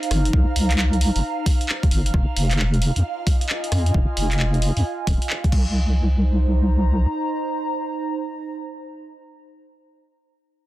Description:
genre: UK garage, two-step garage.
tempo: 133 BPM.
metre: 4/4.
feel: swing 65% on 16ths.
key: C minor.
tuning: A4 = 439 Hz.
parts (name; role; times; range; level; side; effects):
airy breathy pad; sustained chords; 0.0-5.5 s; F5; -33 LUFS; right 7 dB; chorus, phaser, sidechain pumping.
punchy analog drum machine; drums; 0.0-5.6 s; crash cymbal, handclaps, hi-hat, rim click; -27 LUFS; equal; none.
warbly tape-like pad; texture; 0.0-9.8 s; Eb4 to Bb5; -28 LUFS; right 1 dB; chorus, built-in reverb, phaser, sidechain pumping.
deep soft wobble bass; bass; 0.1-7.1 s; Eb1 to F2; -19 LUFS; equal; chorus.
electronic kick drum; drums; 0.3-5.6 s; none; -19 LUFS; equal; overdrive.
room: little or no reverb.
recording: dense, heavily limited modern master.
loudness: -18 LUFS.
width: side -16 dB against mid.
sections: 0.0-5.7 A section; 5.7-9.4 B section.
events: none.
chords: 0.0 Cm7; 2.1 Fm7; 5.5 Cm.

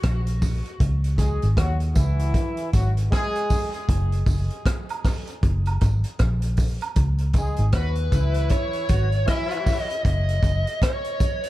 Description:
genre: roots reggae.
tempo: 78 BPM.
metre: 4/4.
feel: swing 60% on 16ths.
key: C# dorian.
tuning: A4 = 441 Hz.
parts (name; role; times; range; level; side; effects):
vintage muted fingered electric bass; bass; 0.0-10.6 s; F#1 to D#2; -22 LUFS; equal; none.
vintage drum kit; drums; 0.0-11.5 s; hi-hat, kick drum, rim click; -23 LUFS; equal; none.
tambourine and woodblock; percussion; 0.4-11.4 s; none; -37 LUFS; right 5 dB; none.
clear horn section; second line; 1.2-9.9 s; E3 to G#4; -30 LUFS; left 1 dB; tape echo.
smooth overdriven lead guitar; melody; 7.8-11.5 s; B4 to E5; -29 LUFS; left 1 dB; tape echo.
room: small room ambience.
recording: dark, warm production.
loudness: -20 LUFS.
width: side -16 dB against mid.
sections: 0.0-11.5 A section.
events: none.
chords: 0.0 N.C.; 0.8 C#m; 3.9 F#; 7.0 C#m; 10.1 F#5.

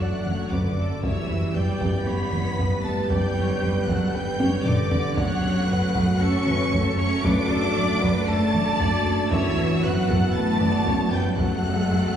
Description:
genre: cinematic, hybrid orchestral and electronic film score.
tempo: 116 BPM.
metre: 4/4.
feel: straight.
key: unclear.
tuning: A4 = 440 Hz.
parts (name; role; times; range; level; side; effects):
warm symphonic violin section; melody; 0.0-12.2 s; D6 to D7; -34 LUFS; left 1 dB; none.
dark studio violin section; second line; 0.0-12.2 s; D5 to D6; -31 LUFS; left 2 dB; none.
rich symphonic viola section; accompaniment; 0.0-12.2 s; A4 to D5; -33 LUFS; right 1 dB; none.
mellow French horn section; sustained chords; 0.0-12.2 s; A3 to B4; -32 LUFS; left 2 dB; none.
mellow trombone section; sustained chords; 0.0-12.2 s; C#3 to B3; -31 LUFS; right 2 dB; none.
warbly tape-like pad; sustained chords; 0.0-12.2 s; F#3 to D5; -31 LUFS; left 1 dB; chorus, built-in reverb.
rubbery square bass; riff; 0.0-12.1 s; F#2; -29 LUFS; left 1 dB; none.
rich symphonic cello section; bass; 0.0-12.2 s; D3 to D4; -27 LUFS; right 1 dB; none.
sub bass with octave; bass; 0.0-12.2 s; F#1; -34 LUFS; equal; none.
warm symphonic double bass section; bass; 0.3-12.0 s; F#2; -29 LUFS; right 2 dB; none.
solo taiko drums; drums; 0.3-11.9 s; none; -30 LUFS; equal; none.
riser; sound effects; 10.6-12.2 s; none; -33 LUFS; equal; none.
room: wet scoring stage reverb, RT60 2.0 s.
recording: heard from further back in the room, studio reverb.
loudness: -20 LUFS.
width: side -9 dB against mid.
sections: 0.0-12.2 A section.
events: drum fill 4.4-5.2.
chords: 0.0 D/F#; 1.0 Emadd9/F#; 3.1 G/F#; 5.2 F#m; 7.2 D/F#; 9.3 Emadd9/F#; 11.4 F#m.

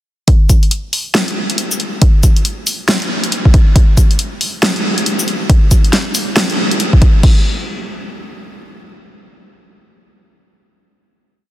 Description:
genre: dubstep.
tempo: 138 BPM.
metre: 4/4.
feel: swing 61% on 16ths, half-time.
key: none.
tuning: none.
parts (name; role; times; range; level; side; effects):
deep house drum kit; drums; 0.3-7.3 s; crash cymbal, hi-hat, shaker, snare drum; -16 LUFS; equal; none.
electronic kick drum; drums; 0.3-7.3 s; none; -8 LUFS; equal; none.
room: moderate huge ambient reverb, RT60 4.9 s.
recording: dense, heavily limited modern master.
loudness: -10 LUFS.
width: side -15 dB against mid.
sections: 0.3-7.2 build; 7.2-10.7 final hit.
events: build-up 0.3-7.2.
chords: none.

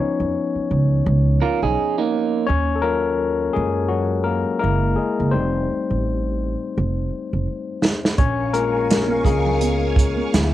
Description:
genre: R&B, neo-soul.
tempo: 84 BPM.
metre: 4/4.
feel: swing 57% on 16ths.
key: unclear.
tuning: A4 = 440 Hz.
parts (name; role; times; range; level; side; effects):
barky tine electric piano; accompaniment; 0.0-10.5 s; F3 to Db5; -22 LUFS; left 5 dB; overdrive, auto-pan, cassette tape.
upright bass; bass; 0.0-10.5 s; F1 to Gb2; -22 LUFS; right 2 dB; none.
electric guitar through a small old amp; second line; 1.4-2.5 s; Bb3 to Bb4; -19 LUFS; right 8 dB; cassette tape.
unplugged drum kit; drums; 7.8-10.5 s; hi-hat, kick drum, snare drum; -19 LUFS; right 2 dB; cassette tape.
phased string machine; sustained chords; 8.2-10.5 s; Bb4 to D6; -28 LUFS; right 1 dB; ensemble chorus, phaser, cassette tape.
congas; percussion; 8.2-10.5 s; none; -29 LUFS; right 9 dB; none.
room: light reverb.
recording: home recording on cassette.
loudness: -18 LUFS.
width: side -13 dB against mid.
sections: 0.0-10.5 A section.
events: tine electric piano solo 0.0-10.5; drum fill 6.8-8.2.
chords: 0.0 Db9; 2.5 Ebm9; 4.6 Gb9; 5.3 F7; 8.2 Bbm7.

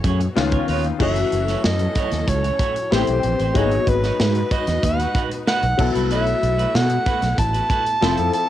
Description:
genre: polished 1980s jazz-funk pop.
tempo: 94 BPM.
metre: 4/4.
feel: straight.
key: F# dorian.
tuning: A4 = 439 Hz.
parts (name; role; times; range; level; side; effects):
clear grand piano; accompaniment; 0.0-8.5 s; D#3 to A4; -24 LUFS; left 8 dB; ensemble chorus.
warm studio string section; sustained chords; 0.0-8.5 s; C#3 to C#5; -32 LUFS; left 1 dB; none.
clean electric guitar; riff; 0.0-8.4 s; A3 to C#5; -29 LUFS; right 9 dB; lush chorus.
fretless electric bass; bass; 0.0-8.3 s; F1 to B2; -22 LUFS; right 1 dB; ensemble chorus.
modern studio drum kit; drums; 0.0-8.5 s; crash cymbal, hi-hat, kick drum, snare drum; -24 LUFS; equal; cassette tape.
warm soprano saxophone; melody; 1.0-8.5 s; B4 to A5; -22 LUFS; right 1 dB; none.
room: light reverb.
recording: home recording on cassette.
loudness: -17 LUFS.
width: side -12 dB against mid.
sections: 0.0-1.0 A section; 1.0-8.5 B section.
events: none.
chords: 0.4 C#9; 1.0 F#m7; 2.9 Am7; 3.6 G#m7; 5.8 B7sus4.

